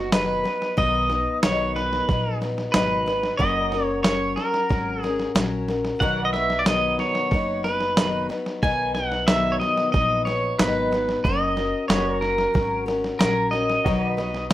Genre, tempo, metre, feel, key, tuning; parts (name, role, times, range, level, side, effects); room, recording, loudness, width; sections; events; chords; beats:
honky-tonk and classic country; 92 BPM; 4/4; straight; B major; A4 = 440 Hz
pedal steel guitar; melody; 0.0-14.5 s; F#4 to G#5; -23 LUFS; right 1 dB; slapback echo
picked steel-string acoustic guitar; accompaniment; 0.0-14.5 s; B2 to B4; -26 LUFS; left 4 dB
pedal steel guitar; sustained chords; 0.0-14.5 s; F#4 to D#5; -34 LUFS; right 1 dB; lush chorus, plate reverb
upright bass; bass; 0.0-14.5 s; F#1 to B1; -31 LUFS; right 1 dB
lo-fi sampler-style drum kit; drums; 0.1-14.5 s; hi-hat, kick drum, snare drum; -24 LUFS; right 1 dB; overdrive
wet studio reverb, RT60 0.5 s; rough home demo mix; -20 LUFS; side -14 dB against mid
0.0-14.5 A section
0.0 B; 3.4 F#; 6.0 B; 11.2 F#; 13.9 B
0.12 | 0.77 1.43 2.08 2.74 | 3.39 4.05 4.70 5.36 | 6.01 6.67 7.32 7.98 | 8.63 9.29 9.94 10.59 | 11.25 11.90 12.55 13.21 | 13.86 14.51